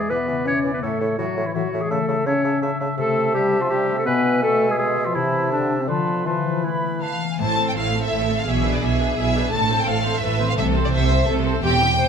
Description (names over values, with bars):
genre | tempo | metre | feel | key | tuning
classical | 167 BPM | 3/4 | rubato | A minor | A4 = 442 Hz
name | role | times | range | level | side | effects
mellow silver concert flute | second line | 0.0-7.4 s | E5 to B5 | -30 LUFS | left 1 dB | none
warm clarinet | second line | 0.0-7.0 s | C4 to C#5 | -23 LUFS | left 1 dB | none
warm oboe | second line | 0.0-7.2 s | B4 to E5 | -29 LUFS | right 2 dB | none
warm French horn section | sustained chords | 0.0-7.0 s | C3 to C#4 | -25 LUFS | left 3 dB | none
concert harp | arpeggios | 0.0-12.1 s | E2 to A5 | -28 LUFS | left 12 dB | none
clear bassoon | accompaniment | 0.1-7.2 s | A2 to E3 | -27 LUFS | right 3 dB | none
warm symphonic violin section | melody | 7.0-12.1 s | D5 to A5 | -23 LUFS | left 1 dB | none
rich symphonic violin section | second line | 7.4-12.1 s | G4 to C5 | -27 LUFS | equal | none
clear symphonic viola section | accompaniment | 7.4-11.8 s | A3 to C5 | -28 LUFS | right 3 dB | none
rich studio double bass section | bass | 7.4-11.9 s | E1 to C2 | -24 LUFS | right 4 dB | none
warm studio cello section | bass | 7.4-11.9 s | E2 to C3 | -25 LUFS | right 4 dB | none
timpani | percussion | 10.6-11.1 s | C3 | -32 LUFS | right 2 dB | none
room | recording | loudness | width
light reverb | close, detailed microphones | -18 LUFS | side -7 dB against mid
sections
0.0-7.4 A section; 7.4-12.1 B section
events
none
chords
0.0 E7(no3); 0.8 A; 1.9 A/C#; 3.0 Am/C; 4.1 E/B; 5.1 Am/C; 5.9 Bm7b5/D; 6.3 Esus4; 7.0 E; 7.4 Am; 8.5 E7/B; 9.5 Am; 10.6 Am/C